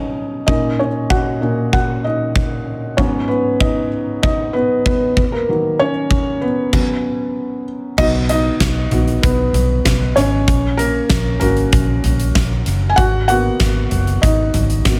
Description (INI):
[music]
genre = piano-driven pop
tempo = 96 BPM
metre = 4/4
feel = straight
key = B major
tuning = A4 = 443 Hz
[part]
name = felt-muted upright piano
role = accompaniment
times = 0.0-15.0 s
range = G#2 to G#5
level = -20 LUFS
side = equal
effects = none
[part]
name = huge arena drum kit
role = drums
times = 0.5-15.0 s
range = crash cymbal, hi-hat, kick drum, snare drum, toms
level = -21 LUFS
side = equal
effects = none
[part]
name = vintage muted fingered electric bass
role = bass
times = 8.0-15.0 s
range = F#1 to B1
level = -20 LUFS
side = equal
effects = none
[sound]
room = light reverb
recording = none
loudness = -17 LUFS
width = mono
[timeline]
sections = 0.0-8.0 A section; 8.0-15.0 B section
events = felt piano solo 0.0-8.0, 8.0-15.0; stop 6.7-8.0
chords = 0.5 F#/A#; 3.0 G#m7; 5.2 D#m; 6.7 F#sus4; 8.0 B; 10.5 F#; 13.0 G#m7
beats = | 0.48 1.10 1.73 2.35 | 2.98 3.60 4.23 4.85 | 5.48 6.10 6.73 7.36 | 7.98 8.61 9.23 9.86 | 10.48 11.11 11.73 12.36 | 12.98 13.61 14.23 14.86